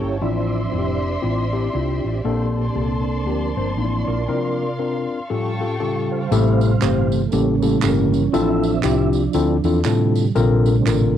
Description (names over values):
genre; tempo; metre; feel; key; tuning
uptempo gospel; 118 BPM; 4/4; swing 60% on 8ths; unclear; A4 = 439 Hz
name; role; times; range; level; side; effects
mellow tine electric piano; accompaniment; 0.0-11.2 s; A2 to C5; -21 LUFS; left 5 dB; medium stereo tremolo, cassette tape
mellow tonewheel organ; sustained chords; 0.0-11.2 s; C3 to E#5; -23 LUFS; right 8 dB; fast rotary speaker, chorus vibrato, cassette tape
warm studio string section; sustained chords; 0.0-6.3 s; Bb3 to C#6; -30 LUFS; left 1 dB; cassette tape
hollow-body short-scale fingered electric bass; bass; 0.0-11.2 s; F1 to A2; -22 LUFS; right 1 dB; transformer saturation
tambourine and handclaps; percussion; 6.3-11.0 s; none; -31 LUFS; right 10 dB; none
room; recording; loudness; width
light reverb, small room reverb; home recording on cassette; -17 LUFS; side -10 dB against mid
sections
0.0-6.3 A section; 6.3-11.2 B section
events
tonewheel organ solo 0.0-6.3, 6.3-11.2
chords
0.2 Dm9; 2.2 Bbmaj9; 4.3 C9sus4; 5.3 A7alt; 6.3 Am7; 7.3 A7b9; 8.3 Dm9/A; 10.4 Bbmaj9